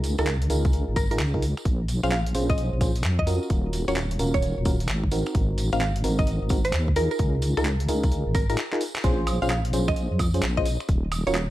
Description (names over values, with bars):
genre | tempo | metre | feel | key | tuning
UK garage, two-step garage | 130 BPM | 4/4 | swing 64% on 16ths | Bb minor | A4 = 440 Hz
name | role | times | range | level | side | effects
FM electric piano | stabs | 0.0-11.4 s | C4 to C5 | -29 LUFS | equal | chorus, ping-pong delay
deep soft wobble bass | bass | 0.0-11.5 s | Eb1 to F2 | -25 LUFS | equal | chorus, tube saturation
breakbeat sampler-style drum kit | drums | 0.0-11.5 s | finger snaps, handclaps, hi-hat, woodblock | -33 LUFS | equal | none
tambourine | percussion | 0.0-11.5 s | none | -41 LUFS | right 3 dB | none
mallet-like synth pluck | melody | 0.2-11.4 s | Bb4 to F5 | -30 LUFS | equal | chorus, ping-pong delay
electronic kick drum | drums | 0.7-11.0 s | none | -25 LUFS | equal | none
room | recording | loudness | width
little or no reverb | dark, warm production, vinyl crackle | -22 LUFS | side -15 dB against mid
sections
0.0-9.0 A section; 9.0-11.5 B section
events
break 8.6-9.0; drum fill 8.7-9.0; band accent 8.9; drop 9.0-11.5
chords
0.0 Db69; 1.7 Bbm9; 3.5 Ebm9; 5.1 Ab9; 7.2 Db69; 9.0 Bbm9; 10.9 Ebm9